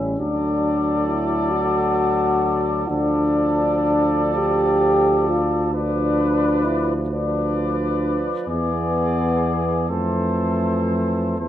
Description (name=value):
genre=classical, hymn-like piece for brass band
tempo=40-46 BPM (dotted quarters)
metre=6/8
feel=rubato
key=unclear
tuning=A4 = 444 Hz
part: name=mellow trumpet section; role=melody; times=0.0-11.5 s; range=C5 to D5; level=-27 LUFS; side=left 7 dB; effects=none
part: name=clear euphonium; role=accompaniment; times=0.0-11.5 s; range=E3 to G3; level=-29 LUFS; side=right 4 dB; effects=none
part: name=warm euphonium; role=accompaniment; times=0.0-11.5 s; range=E3 to G4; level=-21 LUFS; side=left 1 dB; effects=none
part: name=mellow tuba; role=bass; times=0.0-11.5 s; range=A1 to F2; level=-25 LUFS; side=equal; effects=none
part: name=warm flugelhorn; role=second line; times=0.2-11.5 s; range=G#4 to B4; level=-28 LUFS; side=right 6 dB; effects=none
room=wet recital hall reverb, RT60 1.5 s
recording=nothing above 10.4 kHz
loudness=-18 LUFS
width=side -11 dB against mid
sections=0.0-11.5 A section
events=none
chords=0.2 D; 2.9 Dm; 5.7 Bdim/D; 8.5 E7; 9.9 Fmaj7